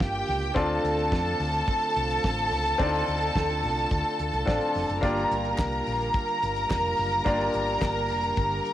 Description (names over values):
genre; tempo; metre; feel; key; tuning
disco; 107 BPM; 4/4; straight; G minor; A4 = 442 Hz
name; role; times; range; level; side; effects
warm studio string section; second line; 0.0-8.7 s; G4 to Bb5; -26 LUFS; equal; cassette tape
clear concert grand piano; accompaniment; 0.0-8.7 s; Bb3 to F5; -31 LUFS; left 2 dB; cassette tape, plate reverb
tonewheel organ; sustained chords; 0.0-8.7 s; D3 to G4; -35 LUFS; right 1 dB; overdrive, slow rotary speaker, cassette tape
hollow-body short-scale fingered electric bass; bass; 0.0-8.6 s; F1 to F2; -32 LUFS; equal; none
damped 70s drum kit; drums; 0.0-8.7 s; hi-hat, kick drum, snare drum; -30 LUFS; equal; none
group handclap; percussion; 5.6-7.9 s; none; -42 LUFS; right 5 dB; none
room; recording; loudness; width
moderate studio reverb, RT60 0.6 s; home recording on cassette; -24 LUFS; side -12 dB against mid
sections
0.0-8.7 A section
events
none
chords
0.0 Gm7; 0.6 Dm7; 5.0 Gm7